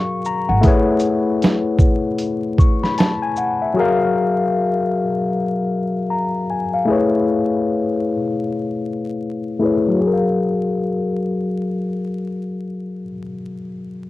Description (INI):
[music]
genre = lo-fi hip hop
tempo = 77 BPM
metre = 4/4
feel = swing 60% on 16ths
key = F# major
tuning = A4 = 440 Hz
[part]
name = tine electric piano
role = accompaniment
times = 0.0-14.1 s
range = F#3 to C#6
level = -18 LUFS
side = left 3 dB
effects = medium stereo tremolo, cassette tape, low-pass filter
[part]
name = dusty soul sampler-style drum kit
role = drums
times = 0.2-3.6 s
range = hi-hat, kick drum, shaker, snare drum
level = -15 LUFS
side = equal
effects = cassette tape
[part]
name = upright bass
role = bass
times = 0.5-0.6 s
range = G#1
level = -20 LUFS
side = right 1 dB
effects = none
[sound]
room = moderate booth ambience, RT60 0.2 s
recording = home recording on cassette, vinyl crackle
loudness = -17 LUFS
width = side -16 dB against mid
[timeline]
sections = 0.0-10.0 A section; 10.0-13.1 B section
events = filter sweep on tine electric piano 0.0-10.0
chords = 0.0 F#maj9; 0.6 Amaj9; 3.8 F#maj9; 6.9 Amaj9; 10.0 F#maj9